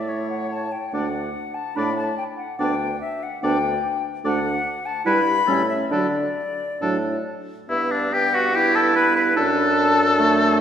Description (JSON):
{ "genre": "quick classical-period movement for wind quintet", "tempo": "133-150 BPM", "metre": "4/4", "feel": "rubato", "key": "D major", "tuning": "A4 = 440 Hz", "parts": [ { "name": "concert flute", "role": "melody", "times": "0.0-10.6 s", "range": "D5 to B5", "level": "-26 LUFS", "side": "left 6 dB", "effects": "none" }, { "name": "clear oboe", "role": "second line", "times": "0.0-10.6 s", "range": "D4 to D5", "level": "-22 LUFS", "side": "left 2 dB", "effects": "none" }, { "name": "mellow French horn", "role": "accompaniment", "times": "0.0-10.6 s", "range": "F#3 to D4", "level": "-29 LUFS", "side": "equal", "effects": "none" }, { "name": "warm bassoon", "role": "bass", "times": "0.0-10.6 s", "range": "D2 to D3", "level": "-27 LUFS", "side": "right 2 dB", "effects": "none" }, { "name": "warm clarinet", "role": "accompaniment", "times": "0.1-10.6 s", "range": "A3 to E4", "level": "-25 LUFS", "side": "right 5 dB", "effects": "none" } ], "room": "wet scoring stage reverb, RT60 2.0 s", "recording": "recorded in a church or concert hall", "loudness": "-19 LUFS", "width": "side -9 dB against mid", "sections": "0.0-7.7 A section; 7.7-10.6 B section", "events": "none", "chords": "0.1 A; 0.9 D; 2.6 G/D; 4.3 D; 5.1 Em/G; 5.5 A7; 5.9 D; 7.7 G; 9.4 D/F#", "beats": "0.09 0.52 | 0.95 1.37 1.78 2.19 | 2.60 3.02 3.44 3.85 | 4.26 4.66 5.06 5.48 | 5.92 6.36 6.81 7.26 | 7.69 8.12 8.53 8.95 | 9.36 9.78 10.19 10.60" }